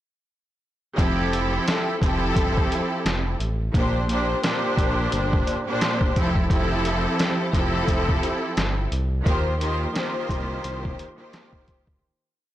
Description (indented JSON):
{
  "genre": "hip hop, boom-bap hip-hop",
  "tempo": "87 BPM",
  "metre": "4/4",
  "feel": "swing 59% on 16ths",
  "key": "F major",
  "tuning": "A4 = 440 Hz",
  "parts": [
    { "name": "rich studio string section", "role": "accompaniment", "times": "1.0-12.0 s", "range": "Bb2 to C5", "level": "-24 LUFS", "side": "equal", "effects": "none" },
    { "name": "smooth synth bass", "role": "bass", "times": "1.0-12.0 s", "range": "F1 to Eb2", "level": "-27 LUFS", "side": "equal", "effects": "tube saturation" },
    { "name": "trip hop sampler-style drum kit", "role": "drums", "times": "1.0-12.0 s", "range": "handclaps, hi-hat, kick drum, snare drum", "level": "-24 LUFS", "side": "equal", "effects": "none" }
  ],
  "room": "light reverb",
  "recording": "blown-out, overdriven recording, overdrive",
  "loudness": "-21 LUFS",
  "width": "side -13 dB against mid",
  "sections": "1.0-12.0 hook",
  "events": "fade-out 9.3-12.0",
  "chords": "1.0 Fmaj9; 3.7 Bb69; 6.2 Fmaj9; 9.3 Eb69",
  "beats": "| 0.98 1.68 2.36 3.05 | 3.74 4.43 5.12 5.81 | 6.50 7.19 7.88 8.57 | 9.26 9.95 10.64 11.33"
}